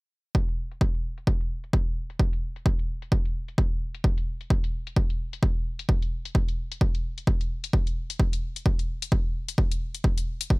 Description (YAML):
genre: bass house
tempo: 130 BPM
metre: 4/4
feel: swing 58% on 16ths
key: none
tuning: none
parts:
  - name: electronic kick drum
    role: drums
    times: 0.3-10.6 s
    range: none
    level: -24 LUFS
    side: equal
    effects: none
  - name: electronic hi-hat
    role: drums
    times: 0.5-10.5 s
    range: none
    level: -35 LUFS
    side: left 7 dB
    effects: overdrive, low-pass filter on hats
room: little or no reverb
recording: none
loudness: -24 LUFS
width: side -27 dB against mid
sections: 0.3-10.6 A section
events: filter sweep on drum 0.3-10.6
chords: none